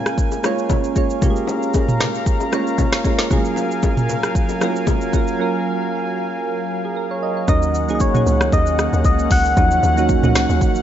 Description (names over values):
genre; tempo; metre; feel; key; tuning
amapiano; 115 BPM; 4/4; swing 55% on 16ths; Eb minor; A4 = 437 Hz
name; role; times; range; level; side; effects
soft electric-piano-like synth keys; accompaniment; 0.0-10.8 s; F3 to Eb5; -22 LUFS; right 4 dB; chorus
warm analog pad; sustained chords; 0.0-10.8 s; Eb3 to Bb5; -24 LUFS; equal; chorus, sidechain pumping
afro-pop drum kit; drums; 0.1-10.8 s; hi-hat, kick drum, rim click, shaker, snare drum, toms; -19 LUFS; equal; none
bongos and congas; percussion; 0.3-5.3 s; none; -27 LUFS; left 8 dB; none
soft struck synth lead; melody; 7.5-10.8 s; Db5 to Gb5; -20 LUFS; left 2 dB; chorus, digital delay
hollow log drum bass; bass; 7.5-10.6 s; Db2 to Eb2; -20 LUFS; equal; none
room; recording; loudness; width
light reverb; nothing above 7.6 kHz; -16 LUFS; side -10 dB against mid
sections
0.0-7.5 A section; 7.5-10.8 B section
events
break 5.4-7.5; drop 7.5-10.8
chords
0.0 Bbm7; 3.3 Gbmaj9; 7.5 Ebm7